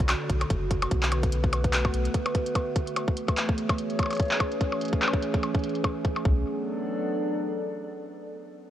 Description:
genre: IDM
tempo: 146 BPM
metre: 4/4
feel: swing 56% on 16ths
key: B dorian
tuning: A4 = 441 Hz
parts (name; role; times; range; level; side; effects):
- warbly tape-like pad; sustained chords; 0.0-7.9 s; D3 to D5; -29 LUFS; equal; chorus, built-in reverb, vintage 12-bit sampler grit, sidechain pumping
- warm sub bass; bass; 0.0-2.1, 6.3-6.4 s; F#1 to B1; -27 LUFS; equal; none
- electronic kick drum; drums; 0.0-6.3 s; none; -26 LUFS; equal; overdrive
- glitchy drum kit; drums; 0.0-6.2 s; handclaps, hi-hat, percussion blips; -30 LUFS; left 1 dB; overdrive, low-pass filter on hats, low-pass filter on perc, low-pass filter on snare, low-pass filter on toms, low-pass filter on room
room: light reverb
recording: worn, warbling old tape, cassette tape, warbly pitch drift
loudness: -24 LUFS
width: side -12 dB against mid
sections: 0.0-6.3 A section; 6.3-7.9 B section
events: none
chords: 0.0 Bm7; 3.0 Amaj7; 6.3 Bm7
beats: 0.09 0.50 0.91 | 1.32 1.73 2.14 2.56 | 2.97 3.38 3.79 4.20 | 4.61 5.02 5.43 5.84 | 6.25 6.67 7.08 7.49

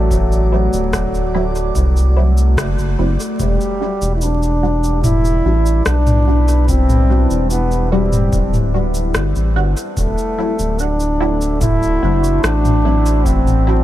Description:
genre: ambient dub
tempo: 73 BPM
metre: 4/4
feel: straight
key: E minor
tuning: A4 = 441 Hz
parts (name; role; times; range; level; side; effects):
- mellow trombone; melody; 0.0-13.8 s; F#3 to E4; -20 LUFS; equal; dub echo
- deep dark ambient pad; sustained chords; 0.0-13.8 s; G3 to D5; -25 LUFS; equal; chorus, built-in reverb
- round analog bass; bass; 0.0-13.8 s; D1 to C2; -15 LUFS; equal; none
- backwards swelling texture; texture; 0.0-3.4 s; D5; -34 LUFS; right 4 dB; built-in reverb
- electronic kick drum; drums; 0.1-13.4 s; none; -22 LUFS; equal; none
- organic electronic drum kit; drums; 0.1-13.6 s; cabasa, rim click, toms; -22 LUFS; left 1 dB; none
- filtered dub chord stab; stabs; 0.5-13.8 s; F#3 to F#4; -25 LUFS; equal; phaser, lush chorus, dub echo
room: little or no reverb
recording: vinyl crackle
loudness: -13 LUFS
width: side -14 dB against mid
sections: 0.0-3.4 A section; 3.4-13.8 B section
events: band accent 2.6-3.0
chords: 0.0 D7; 3.4 Em7; 10.0 D7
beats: | 0.11 0.93 1.75 2.58 | 3.40 4.22 5.04 5.86 | 6.68 7.51 8.33 9.15 | 9.97 10.79 11.62 12.44 | 13.26

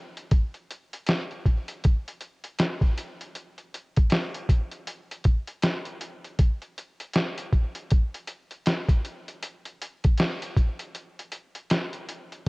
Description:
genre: hip hop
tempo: 79 BPM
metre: 4/4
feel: swing 61% on 16ths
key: none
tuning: none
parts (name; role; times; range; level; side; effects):
- lo-fi sampler-style drum kit; drums; 0.2-12.5 s; hi-hat, kick drum, snare drum; -23 LUFS; equal; none
room: little or no reverb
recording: worn, warbling old tape, cassette tape, warbly pitch drift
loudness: -24 LUFS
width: side -29 dB against mid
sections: 0.3-12.5 A section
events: none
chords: none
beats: | 0.32 1.07 1.83 2.59 | 3.35 4.11 4.87 5.63 | 6.39 7.15 7.91 8.67 | 9.43 10.19 10.95 11.71 | 12.47

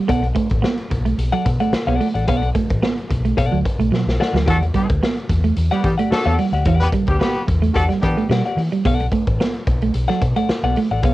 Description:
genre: funk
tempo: 110 BPM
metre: 4/4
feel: straight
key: E minor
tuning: A4 = 436 Hz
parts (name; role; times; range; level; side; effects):
- semi-hollow electric guitar; riff; 0.0-11.1 s; E3 to B3; -20 LUFS; right 4 dB; none
- clean electric guitar; accompaniment; 0.1-11.1 s; G4 to F#5; -22 LUFS; left 4 dB; vibrato effect
- vintage muted fingered electric bass; bass; 0.1-11.1 s; A1 to E3; -20 LUFS; equal; none
- raw garage drum kit; drums; 0.1-11.1 s; hi-hat, kick drum, snare drum; -22 LUFS; equal; cassette tape
- mellow horn section; second line; 4.5-8.2 s; G3 to B4; -21 LUFS; left 2 dB; none
room: moderate booth ambience, RT60 0.2 s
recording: home recording on cassette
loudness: -16 LUFS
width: side -16 dB against mid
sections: 0.0-11.1 A section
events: drum fill 3.9-4.5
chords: 0.1 Bm7; 4.5 Em9; 8.8 Bm7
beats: | 0.10 0.64 1.19 1.74 | 2.28 2.83 3.38 3.92 | 4.47 5.02 5.57 6.11 | 6.66 7.21 7.75 8.30 | 8.85 9.39 9.94 10.49 | 11.04

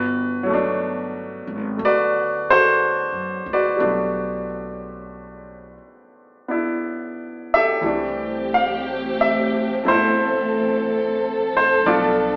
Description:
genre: jazz ballad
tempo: 60 BPM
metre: 4/4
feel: swing 68% on 8ths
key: G major, C major from 7.8 s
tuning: A4 = 444 Hz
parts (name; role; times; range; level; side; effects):
- clear grand piano; accompaniment; 0.0-12.4 s; B2 to F5; -22 LUFS; equal; none
- upright bass; bass; 0.0-12.4 s; G1 to F#2; -34 LUFS; equal; none
- dark symphonic string section; sustained chords; 7.8-12.4 s; E3 to A4; -24 LUFS; equal; none
room: wet large studio reverb, RT60 0.9 s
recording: band playing live in one room, AM radio sound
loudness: -20 LUFS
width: mono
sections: 0.0-7.8 A section; 7.8-12.4 B section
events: none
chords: 0.0 Gmaj9; 7.8 C6; 11.8 Bm7b5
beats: 0.80 1.80 2.79 | 3.79 4.80 5.81 6.82 | 7.83 8.84 9.85 10.85 | 11.85

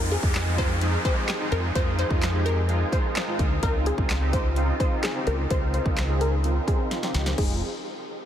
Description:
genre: dance-pop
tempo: 128 BPM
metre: 4/4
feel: straight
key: F minor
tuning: A4 = 435 Hz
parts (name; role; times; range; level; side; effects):
- wide unison pluck; melody; 0.0-7.6 s; Ab4 to C5; -31 LUFS; left 2 dB; low-pass filter, ping-pong delay
- big bright polysynth; accompaniment; 0.0-7.6 s; Ab3 to Ab4; -31 LUFS; right 2 dB; ensemble chorus, sidechain pumping, low-pass filter
- filtered supersaw swell; sustained chords; 0.0-7.6 s; Db3 to Ab4; -33 LUFS; equal; sidechain pumping, low-pass filter
- fingered electric bass; bass; 0.0-7.6 s; F1 to F2; -25 LUFS; equal; sidechain pumping
- downlifter; sound effects; 0.0-3.6 s; none; -35 LUFS; equal; none
- house drum kit; drums; 0.1-7.5 s; crash cymbal, handclaps, hi-hat, kick drum, snare drum; -27 LUFS; equal; none
room: light reverb, digital ambience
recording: none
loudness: -22 LUFS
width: side -10 dB against mid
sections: 0.0-7.4 A section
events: filter sweep 0.0-7.4; drum fill 6.9-7.4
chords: 0.0 Fm7; 3.6 Dbmaj9; 7.4 Fm7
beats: 0.35 0.82 1.29 | 1.76 2.22 2.69 3.16 | 3.63 4.10 4.57 5.04 | 5.51 5.97 6.44 6.91 | 7.38

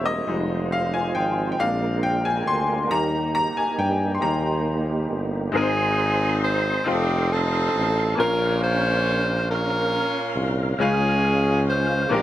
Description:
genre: gospel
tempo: 46 BPM (dotted quarters)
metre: 6/8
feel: straight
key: Ab major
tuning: A4 = 440 Hz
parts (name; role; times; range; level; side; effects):
- bright upright piano; accompaniment; 0.0-12.2 s; Ab2 to C6; -25 LUFS; left 2 dB; none
- tonewheel organ; sustained chords; 0.0-12.2 s; F3 to C6; -29 LUFS; right 3 dB; slow rotary speaker, chorus vibrato
- warm tuba; bass; 0.0-12.2 s; E1 to G2; -25 LUFS; equal; none
- warm saxophone section; melody; 5.6-12.2 s; C4 to C5; -23 LUFS; equal; none
room: light reverb, small room ambience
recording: none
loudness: -20 LUFS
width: side -13 dB against mid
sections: 0.0-5.5 A section; 5.5-12.2 B section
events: upright piano solo 0.0-5.5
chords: 0.3 Fm7; 1.6 Bb7; 2.9 Eb; 5.5 Ab; 6.9 F7; 8.2 Bbm; 10.8 Db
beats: | 0.27 1.59 | 2.91 4.22 | 5.54 6.86 | 8.17 9.48 | 10.79 12.10

